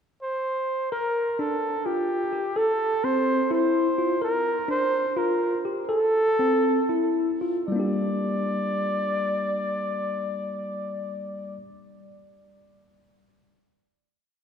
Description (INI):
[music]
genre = contemporary instrumental, chamber music in an uneven meter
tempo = 224-255 BPM (eighths)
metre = 7/8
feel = straight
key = G dorian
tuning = A4 = 442 Hz
[part]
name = warm flugelhorn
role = melody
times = 0.2-11.6 s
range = G4 to D5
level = -26 LUFS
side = equal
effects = none
[part]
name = tine electric piano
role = arpeggios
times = 0.9-11.7 s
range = G3 to Bb4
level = -26 LUFS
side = left 1 dB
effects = none
[sound]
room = wet church reverb, RT60 3.7 s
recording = recorded in a church or concert hall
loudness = -23 LUFS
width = side -7 dB against mid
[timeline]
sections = 0.0-0.9 pickup bar; 0.9-7.7 A section; 7.7-11.4 final chord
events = slowing down 4.2-7.7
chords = 0.0 N.C.; 0.9 Gm9; 2.6 Fmaj7; 4.2 Gm7; 5.9 Fmaj7; 7.7 Gm